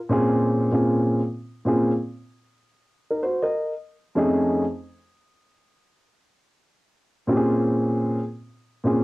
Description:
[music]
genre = hip hop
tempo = 96 BPM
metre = 4/4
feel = swing 61% on 16ths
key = Bb minor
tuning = A4 = 437 Hz
[part]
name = dark baby grand piano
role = solo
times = 0.1-9.0 s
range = F2 to Eb5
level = -20 LUFS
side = equal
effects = none
[sound]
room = moderate small room reverb, RT60 0.6 s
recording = home recording on cassette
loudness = -21 LUFS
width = side -21 dB against mid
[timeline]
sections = 0.0-9.0 A section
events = none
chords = 0.0 Bbm7; 2.3 N.C.; 3.5 F7alt; 4.8 Bbm7

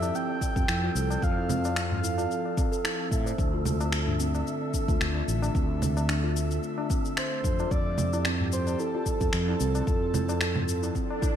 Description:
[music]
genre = organic downtempo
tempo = 111 BPM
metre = 4/4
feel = swing 55% on 16ths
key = unclear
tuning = A4 = 440 Hz
[part]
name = breathy flute-like synth lead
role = melody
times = 0.0-3.1, 7.2-11.4 s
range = A4 to G5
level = -33 LUFS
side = right 1 dB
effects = chorus, digital delay
[part]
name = airy breathy pad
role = sustained chords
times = 0.0-11.4 s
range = D3 to E5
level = -35 LUFS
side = equal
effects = chorus, sidechain pumping
[part]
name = steel tongue drum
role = arpeggios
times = 0.0-11.4 s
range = C4 to E5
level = -34 LUFS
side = left 1 dB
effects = digital delay
[part]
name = fretless electric bass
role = bass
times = 0.0-10.9 s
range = A1 to A2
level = -29 LUFS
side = equal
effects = sidechain pumping
[part]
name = electronic cabasa, finger snaps and congas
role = drums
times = 0.0-11.3 s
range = none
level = -32 LUFS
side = right 1 dB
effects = gated reverb
[part]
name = tabla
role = percussion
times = 0.0-11.3 s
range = none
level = -38 LUFS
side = left 2 dB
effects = none
[part]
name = wind-like tuned noise texture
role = texture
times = 0.0-11.4 s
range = A4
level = -40 LUFS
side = right 5 dB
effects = built-in reverb, wide subtle chorus
[part]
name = electronic kick drum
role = drums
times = 0.4-11.3 s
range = none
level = -28 LUFS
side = equal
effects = none
[part]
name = swell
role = sound effects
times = 11.0-11.4 s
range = none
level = -34 LUFS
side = left 2 dB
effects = none
[sound]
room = moderate lush hall reverb, RT60 2.4 s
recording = bright 1980s-style digital production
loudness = -25 LUFS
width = side -9 dB against mid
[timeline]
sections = 0.0-11.4 A section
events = swell 11.0-11.4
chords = 0.0 Fmaj7; 3.4 Dm; 7.7 Fmaj7

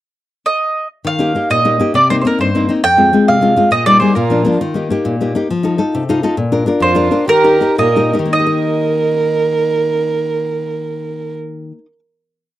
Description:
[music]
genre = italian folk, Italian serenade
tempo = 104-138 BPM (dotted quarters)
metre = 6/8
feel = rubato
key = Eb major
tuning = A4 = 441 Hz
[part]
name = mandolin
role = melody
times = 0.5-4.6, 6.8-11.9 s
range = Bb4 to G5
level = -14 LUFS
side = right 2 dB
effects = none
[part]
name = nylon-string guitar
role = accompaniment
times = 1.0-12.0 s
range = F2 to F5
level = -15 LUFS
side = left 3 dB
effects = none
[part]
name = dark violin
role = second line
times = 4.0-4.6, 6.8-11.3 s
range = F4 to Bb4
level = -18 LUFS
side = right 4 dB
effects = none
[sound]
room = little or no reverb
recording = dry, close 1970s-style studio recording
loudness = -12 LUFS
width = side -14 dB against mid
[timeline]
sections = 0.1-1.0 pickup bar; 1.0-8.3 A section; 8.3-10.6 final chord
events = nylon-string guitar fill 5.9-6.4; slowing down 6.4-8.3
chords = 0.1 N.C.; 1.0 Eb; 1.9 Cm7; 2.8 Fm; 3.7 Eb/Bb; 4.2 Bb; 4.6 Eb; 5.5 F7; 6.4 Bb; 7.3 Eb

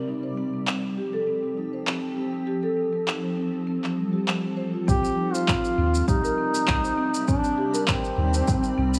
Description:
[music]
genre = organic downtempo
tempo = 100 BPM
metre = 4/4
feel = swing 53% on 16ths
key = C dorian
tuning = A4 = 441 Hz
[part]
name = granular cloud pad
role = sustained chords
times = 0.0-9.0 s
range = C3 to D5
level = -34 LUFS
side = equal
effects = built-in reverb, sidechain pumping
[part]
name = marimba with soft mallets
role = arpeggios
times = 0.0-9.0 s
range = G3 to C5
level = -30 LUFS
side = equal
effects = digital delay
[part]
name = electronic handclaps and shaker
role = drums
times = 0.7-9.0 s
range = none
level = -32 LUFS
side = equal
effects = overdrive
[part]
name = mellow duduk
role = melody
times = 4.9-9.0 s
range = C4 to G4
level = -28 LUFS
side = equal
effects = digital delay
[part]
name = warm sub bass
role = bass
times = 4.9-9.0 s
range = C2 to Eb2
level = -26 LUFS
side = equal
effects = none
[part]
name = electronic kick drum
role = drums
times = 4.9-8.6 s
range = none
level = -28 LUFS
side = equal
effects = overdrive
[sound]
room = light reverb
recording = studio ambience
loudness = -25 LUFS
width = mono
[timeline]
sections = 0.0-4.9 A section; 4.9-9.0 B section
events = none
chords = 0.1 Fadd9; 4.9 Cm

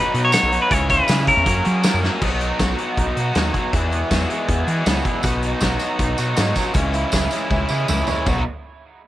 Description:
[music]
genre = indie rock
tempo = 159 BPM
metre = 4/4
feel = straight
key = B major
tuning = A4 = 436 Hz
[part]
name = clean electric guitar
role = melody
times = 0.0-2.0 s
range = A#4 to C#5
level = -18 LUFS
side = left 1 dB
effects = cassette tape, tape echo
[part]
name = crunchy overdriven guitar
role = riff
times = 0.0-8.4 s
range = E2 to G#4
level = -24 LUFS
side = left 5 dB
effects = cassette tape
[part]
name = raw garage guitar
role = riff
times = 0.0-8.4 s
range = E2 to C#5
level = -25 LUFS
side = right 6 dB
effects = overdrive, analog chorus, cassette tape
[part]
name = deep dub fingered electric bass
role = bass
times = 0.1-8.4 s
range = B1 to F#3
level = -22 LUFS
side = equal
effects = none
[part]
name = loose indie drum kit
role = drums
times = 0.1-8.4 s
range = crash cymbal, hi-hat, kick drum, snare drum, tambourine, toms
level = -22 LUFS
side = equal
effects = none
[part]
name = tambourine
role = percussion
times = 0.3-1.9, 5.2-8.4 s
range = none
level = -31 LUFS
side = right 5 dB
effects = none
[sound]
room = little or no reverb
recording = home recording on cassette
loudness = -17 LUFS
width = side -14 dB against mid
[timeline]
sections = 0.0-2.2 A section; 2.2-8.3 B section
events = drum fill 2.0, 7.5-8.3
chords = 0.0 Badd9; 0.7 C#m; 1.5 F#add9; 2.2 Badd9; 3.7 Eadd9; 5.2 Badd9; 6.8 C#m; 8.3 B

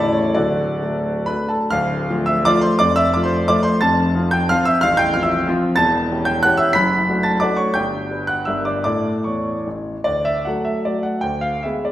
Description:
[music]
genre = classical, romantic triple-time dance for piano with dotted rhythms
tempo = 127-199 BPM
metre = 3/4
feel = rubato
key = D minor, D major from 5.8 s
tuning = A4 = 440 Hz
[part]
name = clear grand piano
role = solo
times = 0.0-11.9 s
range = A0 to B6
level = -16 LUFS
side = equal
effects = none
[sound]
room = wet recital hall reverb, RT60 1.7 s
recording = heard from further back in the room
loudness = -16 LUFS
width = side -13 dB against mid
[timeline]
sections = 0.0-1.7 A section; 1.7-10.1 B section; 10.1-11.9 A section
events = none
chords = 0.4 D; 1.7 Dm; 2.8 Dm/F; 3.8 F; 4.8 F/A; 5.8 A7/E; 6.8 D/F#; 7.7 G; 8.5 Gm; 8.8 A; 10.1 D; 11.2 Ddim7

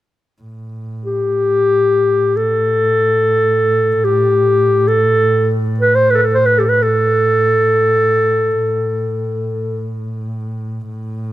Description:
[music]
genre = turkish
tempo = free time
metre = none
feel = none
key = unclear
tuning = A4 = 443 Hz
[part]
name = warm double bass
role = drone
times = 0.4-11.3 s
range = A2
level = -20 LUFS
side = equal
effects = none
[part]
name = dark clarinet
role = melody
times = 1.1-9.9 s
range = G4 to C5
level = -13 LUFS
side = equal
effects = none
[sound]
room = light reverb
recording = close, detailed microphones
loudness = -12 LUFS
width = side -14 dB against mid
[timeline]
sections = 0.4-11.3 A section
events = none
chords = none

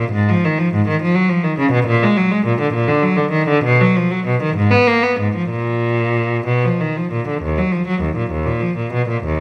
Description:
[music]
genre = classical, baroque-style suite movement for unaccompanied cello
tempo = 61-70 BPM (dotted quarters)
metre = 6/8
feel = rubato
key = Eb minor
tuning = A4 = 440 Hz
[part]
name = rich cello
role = solo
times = 0.0-9.4 s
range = Eb2 to Cb4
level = -17 LUFS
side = equal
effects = none
[sound]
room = moderate recital hall reverb, RT60 1.4 s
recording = none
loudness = -17 LUFS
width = mono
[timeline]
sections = 0.0-7.4 A section; 7.4-9.4 A section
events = none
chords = none

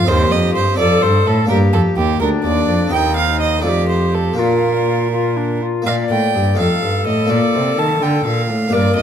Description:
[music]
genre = classical, baroque-style sonata movement with continuo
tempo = 84 BPM (dotted quarters)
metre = 6/8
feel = rubato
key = Bb major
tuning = A4 = 440 Hz
[part]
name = tenor recorder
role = melody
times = 0.0-9.0 s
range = D4 to Eb5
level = -20 LUFS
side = left 6 dB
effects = none
[part]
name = warm violin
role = second line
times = 0.0-9.0 s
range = G4 to A5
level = -19 LUFS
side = right 7 dB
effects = none
[part]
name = harpsichord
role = accompaniment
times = 0.0-9.0 s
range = D2 to Bb4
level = -21 LUFS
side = left 2 dB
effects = none
[part]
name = rich cello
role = bass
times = 0.0-9.0 s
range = D2 to Eb3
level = -18 LUFS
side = right 1 dB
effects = none
[sound]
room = moderate recital hall reverb, RT60 1.9 s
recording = close, detailed microphones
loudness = -14 LUFS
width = side -8 dB against mid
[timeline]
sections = 0.0-5.9 A section; 5.9-9.0 B section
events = none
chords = 0.1 Cm7/Eb; 0.8 F7; 1.5 Gm; 2.9 Cm/Eb; 3.6 F7; 4.4 Bb; 6.6 F7; 7.3 Bb

